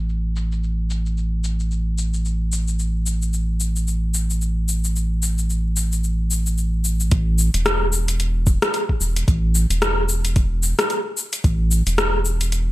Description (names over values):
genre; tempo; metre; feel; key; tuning
organic downtempo; 111 BPM; 4/4; swing 58% on 16ths; unclear; A4 = 439 Hz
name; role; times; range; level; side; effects
round analog bass; bass; 0.0-12.7 s; E1 to A1; -20 LUFS; equal; sidechain pumping
deep house drum kit; drums; 0.1-12.6 s; hi-hat, rim click, shaker; -23 LUFS; left 1 dB; overdrive, low-pass filter on perc, low-pass filter on hats, low-pass filter on snare, low-pass filter on room, gated reverb
electronic kick drum; drums; 7.1-11.6 s; none; -18 LUFS; equal; none
room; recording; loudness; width
little or no reverb; bright 1980s-style digital production; -18 LUFS; side -17 dB against mid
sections
0.0-7.1 A section; 7.1-12.7 B section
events
none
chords
none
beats
0.09 | 0.63 1.17 1.71 2.25 | 2.79 3.33 3.87 4.41 | 4.95 5.50 6.04 6.58 | 7.12 7.66 8.20 8.74 | 9.28 9.82 10.36 10.90 | 11.44 11.98 12.52